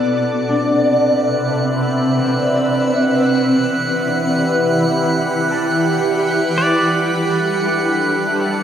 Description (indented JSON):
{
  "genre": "ambient",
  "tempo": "free time",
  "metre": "none",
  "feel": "none",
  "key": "C lydian",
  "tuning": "A4 = 440 Hz",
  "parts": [
    { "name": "shimmering ambient pad", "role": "sustained chords", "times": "0.0-8.6 s", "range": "C3 to B5", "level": "-16 LUFS", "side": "equal", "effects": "chorus, built-in reverb, phaser, shimmer reverb" },
    { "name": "Celtic harp", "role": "arpeggios", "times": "0.0-8.6 s", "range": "E3 to B5", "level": "-22 LUFS", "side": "left 2 dB", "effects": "shimmer reverb, tape echo" },
    { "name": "drifting glass-harmonics texture", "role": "texture", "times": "0.0-8.6 s", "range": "F#5 to F#6", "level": "-22 LUFS", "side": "right 3 dB", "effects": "chorus, built-in reverb, shimmer reverb" },
    { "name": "pedal steel guitar", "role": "melody", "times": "6.6-8.6 s", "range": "D5", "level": "-22 LUFS", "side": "equal", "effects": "shimmer reverb, tape echo" }
  ],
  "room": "wet scoring stage reverb, RT60 2.1 s",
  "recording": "dark, warm production",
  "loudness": "-14 LUFS",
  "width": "side -9 dB against mid",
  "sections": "0.0-8.6 A section",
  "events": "none",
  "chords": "0.0 Cmaj7; 3.0 Em; 6.5 Gmaj7"
}